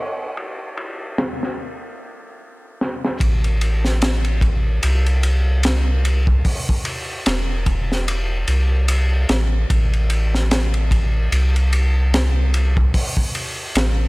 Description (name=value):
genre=trip hop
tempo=74 BPM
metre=4/4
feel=swing 58% on 16ths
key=A minor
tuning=A4 = 440 Hz
part: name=crunchy breakbeat drum kit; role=drums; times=0.4-14.0 s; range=hi-hat, kick drum, ride cymbal, snare drum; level=-22 LUFS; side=equal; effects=low-pass filter on kick, low-pass filter on cymbals, low-pass filter on hats, low-pass filter on snare, low-pass filter on room
part: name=soft dub sub bass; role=bass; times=3.2-14.1 s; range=E1 to C2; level=-17 LUFS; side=equal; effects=none
room=little or no reverb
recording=none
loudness=-17 LUFS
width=side -23 dB against mid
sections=0.0-3.2 A section; 3.2-14.1 B section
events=drum fill 2.8-3.2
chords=none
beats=0.78 1.59 2.40 | 3.21 4.02 4.83 5.64 | 6.45 7.26 8.07 8.88 | 9.70 10.51 11.32 12.13 | 12.94 13.75